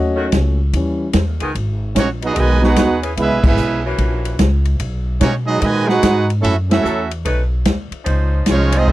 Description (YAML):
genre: jazz, big band swing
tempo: 147 BPM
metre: 4/4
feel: swing 65% on 8ths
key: G# minor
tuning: A4 = 440 Hz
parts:
  - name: warm upright piano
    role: accompaniment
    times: 0.0-1.1 s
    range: E3 to F#5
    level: -20 LUFS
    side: left 2 dB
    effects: none
  - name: upright bass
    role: bass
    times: 0.0-8.9 s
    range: G#1 to B2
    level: -18 LUFS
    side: equal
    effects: none
  - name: warm saxophone section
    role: sustained chords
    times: 0.2-8.9 s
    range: D#3 to B#4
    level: -23 LUFS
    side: equal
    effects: none
  - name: swinging big-band drum kit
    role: drums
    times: 0.3-8.9 s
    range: crash cymbal, hi-hat, kick drum, ride cymbal, snare drum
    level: -18 LUFS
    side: equal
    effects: none
  - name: bright trombone section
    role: second line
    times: 1.9-8.9 s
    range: G#2 to F#4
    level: -18 LUFS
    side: right 3 dB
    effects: none
  - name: brilliant trumpet section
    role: melody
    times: 2.0-8.9 s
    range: G#3 to G#5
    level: -20 LUFS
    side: right 3 dB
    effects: none
room: little or no reverb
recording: dry, close 1970s-style studio recording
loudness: -14 LUFS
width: side -16 dB against mid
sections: 0.0-1.6 A section; 1.6-8.9 B section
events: upright piano solo 0.0-1.6; band accent 3.4, 6.6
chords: 0.0 D#m7b5; 0.7 D#7b9; 1.6 G#m7; 3.2 C#m7; 4.0 F#7; 4.8 B6; 6.4 F#m7; 7.3 B9; 8.1 C#maj9